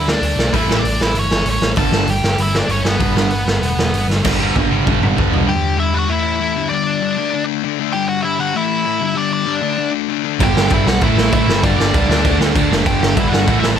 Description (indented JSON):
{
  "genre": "punk rock",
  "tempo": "195 BPM",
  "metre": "4/4",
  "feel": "straight",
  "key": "unclear",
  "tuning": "A4 = 439 Hz",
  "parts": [
    { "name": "nasal lead guitar with a parked wah", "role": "melody", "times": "0.0-13.8 s", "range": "B3 to A5", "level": "-20 LUFS", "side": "equal", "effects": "overdrive" },
    { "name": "thick fuzz guitar", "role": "riff", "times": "0.0-5.5, 10.4-13.8 s", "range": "G2 to D4", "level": "-23 LUFS", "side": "right 1 dB", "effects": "distortion" },
    { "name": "overdriven picked electric bass", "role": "bass", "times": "0.0-5.5, 10.4-13.8 s", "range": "E1 to D2", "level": "-20 LUFS", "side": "equal", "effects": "none" },
    { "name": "raw garage drum kit", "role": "drums", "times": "0.1-5.4, 10.4-13.7 s", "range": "crash cymbal, hi-hat, kick drum, snare drum, toms", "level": "-18 LUFS", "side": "equal", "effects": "none" },
    { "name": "distorted electric guitar", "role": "riff", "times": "0.5-5.5, 10.4-13.8 s", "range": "G2 to D4", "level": "-21 LUFS", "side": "right 16 dB", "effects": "distortion" },
    { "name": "sludgy distorted guitar", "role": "riff", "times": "0.5-13.8 s", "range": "G2 to D4", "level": "-20 LUFS", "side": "left 15 dB", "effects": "overdrive" }
  ],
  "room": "light reverb",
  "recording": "none",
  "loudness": "-14 LUFS",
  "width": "side -8 dB against mid",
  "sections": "0.0-4.3 A section; 4.3-5.5 B section; 5.5-13.8 C section",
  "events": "drum fill 4.1, 4.3-5.5",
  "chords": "0.0 D5; 0.5 A; 1.8 G; 4.3 G5; 6.1 A5; 6.6 G5; 7.2 D5; 8.0 G5; 8.6 A5; 9.0 G5; 9.6 D5; 10.4 G; 11.0 A5; 11.5 G5; 12.1 D; 12.9 G5",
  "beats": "0.23 | 0.54 0.85 1.16 1.47 | 1.78 2.09 2.40 2.71 | 3.02 3.33 3.64 3.95 | 4.25 4.57 4.87 5.18 | 5.49 5.80 6.11 6.42 | 6.72 7.03 7.34 7.65 | 7.95 8.26 8.57 8.88 | 9.18 9.49 9.80 10.11 | 10.41 10.72 11.03 11.33 | 11.64 11.95 12.26 12.56 | 12.87 13.18 13.48 13.79"
}